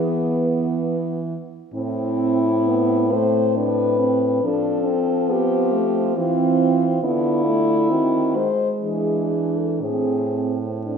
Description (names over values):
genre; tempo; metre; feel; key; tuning
classical, lyrical piece for horn quartet; 57-70 BPM; 3/4; rubato; A minor; A4 = 440 Hz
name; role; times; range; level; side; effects
mellow French horn; melody; 0.0-11.0 s; E4 to B#4; -22 LUFS; left 4 dB; none
mellow French horn; second line; 0.0-11.0 s; B3 to F#4; -26 LUFS; right 9 dB; none
dark French horn; accompaniment; 0.0-11.0 s; G#3 to D4; -24 LUFS; equal; none
mellow French horn; bass; 0.0-11.0 s; A2 to F3; -25 LUFS; right 2 dB; none
room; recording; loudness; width
moderate concert hall reverb, RT60 1.7 s; minimal, uncompressed stereo recording; -18 LUFS; side -6 dB against mid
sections
0.0-11.0 A section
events
none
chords
0.0 E; 1.7 Am; 4.4 F; 7.0 Dm; 7.9 G#7b13/D#; 8.8 E7; 9.8 Am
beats
0.78 | 1.74 2.67 3.55 | 4.43 5.29 6.16 | 7.03 7.90 8.81 | 9.81 10.84